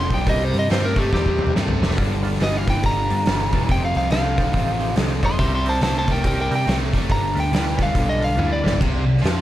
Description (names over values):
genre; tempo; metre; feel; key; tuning
blues rock power trio and southern rock; 141 BPM; 4/4; swing 62% on 8ths; C mixolydian; A4 = 440 Hz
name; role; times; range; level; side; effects
lightly driven lead guitar; melody; 0.0-8.8 s; G4 to C6; -24 LUFS; equal; analog delay
overdriven tonewheel organ; sustained chords; 0.0-8.7 s; A3 to B4; -32 LUFS; right 4 dB; chorus vibrato, slow rotary speaker
cranked stack guitar; riff; 0.0-9.4 s; F2 to A3; -24 LUFS; equal; overdrive
vintage muted picked electric bass; bass; 0.0-9.4 s; E1 to C3; -24 LUFS; equal; none
oversized low-tuned drum kit; drums; 0.1-9.4 s; crash cymbal, hi-hat, kick drum, snare drum, toms; -22 LUFS; equal; none
room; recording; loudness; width
light reverb, small room ambience; none; -18 LUFS; side -14 dB against mid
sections
0.0-8.8 A section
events
lead electric guitar solo 0.0-8.8; drum fill 1.1-2.0, 8.4-8.8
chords
0.3 C7; 2.0 G7; 3.7 F7; 5.4 C7; 7.1 G7; 8.8 C5